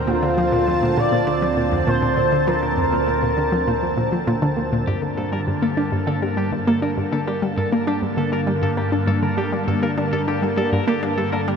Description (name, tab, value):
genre	ambient, sequencer-driven space music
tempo	100 BPM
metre	4/4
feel	straight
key	G minor from 4.9 s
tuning	A4 = 440 Hz
part	lush unison pad	sustained chords	0.0-11.6 s	D2 to A5	-22 LUFS	equal	chorus, phaser
part	expressive portamento lead	melody	0.1-4.3 s	F4 to D5	-22 LUFS	right 1 dB	lush chorus, ping-pong delay
part	analog pluck	riff	0.1-11.6 s	F2 to D4	-22 LUFS	equal	chorus, ping-pong delay
part	twangy electric guitar	arpeggios	4.9-11.4 s	G4 to Bb4	-32 LUFS	left 3 dB	auto-pan, ping-pong delay
room	wet huge ambient reverb, RT60 7.9 s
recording	in a vast, echoing space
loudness	-18 LUFS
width	side -6 dB against mid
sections	0.0-4.9 A section; 4.9-11.6 B section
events	fade-in on clean electric guitar 4.9-11.6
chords	0.0 Bbadd9/D; 4.9 Gmadd9